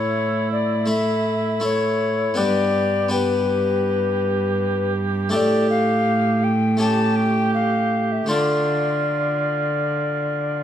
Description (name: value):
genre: classical, renaissance-style consort dance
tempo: 81 BPM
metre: 4/4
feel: straight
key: unclear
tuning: A4 = 440 Hz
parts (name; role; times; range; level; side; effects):
- alto recorder; melody; 0.0-10.6 s; B4 to A5; -23 LUFS; left 6 dB; none
- warm cor anglais; second line; 0.0-10.6 s; E4 to G4; -26 LUFS; right 6 dB; none
- harpsichord; accompaniment; 0.0-10.6 s; G2 to G4; -25 LUFS; left 1 dB; none
- rich cello; bass; 0.0-10.6 s; G2 to D3; -23 LUFS; right 2 dB; none
room: light reverb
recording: close, detailed microphones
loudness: -18 LUFS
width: side -10 dB against mid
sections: 0.0-10.6 A section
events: none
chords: 0.0 A; 2.4 G; 5.3 A7sus4; 6.8 A7; 8.3 Dm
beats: 0.16 0.90 1.64 | 2.38 3.12 3.86 4.59 | 5.33 6.07 6.81 7.55 | 8.29 9.04 9.79 10.54